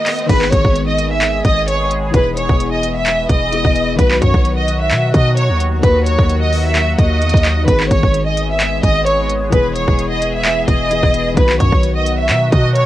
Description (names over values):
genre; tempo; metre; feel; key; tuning
hip hop, trap; 130 BPM; 4/4; half-time; G# minor; A4 = 439 Hz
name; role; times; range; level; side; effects
rich studio violin section; melody; 0.0-12.9 s; B4 to E5; -17 LUFS; right 1 dB; cassette tape, tape echo
dark concert grand piano; accompaniment; 0.0-12.9 s; D#3 to G#4; -24 LUFS; left 8 dB; cassette tape
trap drum kit; drums; 0.1-12.9 s; crash cymbal, handclaps, hi-hat, kick drum; -16 LUFS; equal; cassette tape
sweeping resonant pad; sustained chords; 0.3-12.9 s; D#3 to G#4; -24 LUFS; equal; chorus, cassette tape
hard-hitting 808-style bass; bass; 0.3-12.9 s; E1 to B2; -17 LUFS; equal; none
room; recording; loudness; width
little or no reverb; home recording on cassette; -12 LUFS; side -14 dB against mid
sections
0.3-12.9 A section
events
break 0.0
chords
0.3 G#m; 2.1 E; 4.0 B; 5.8 D#m; 7.7 G#m; 9.5 E; 11.4 B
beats
| 0.29 0.76 1.22 1.68 | 2.14 2.60 3.06 3.52 | 3.99 4.45 4.91 5.37 | 5.83 6.29 6.75 7.22 | 7.68 8.14 8.60 9.06 | 9.52 9.99 10.45 10.91 | 11.37 11.83 12.29 12.76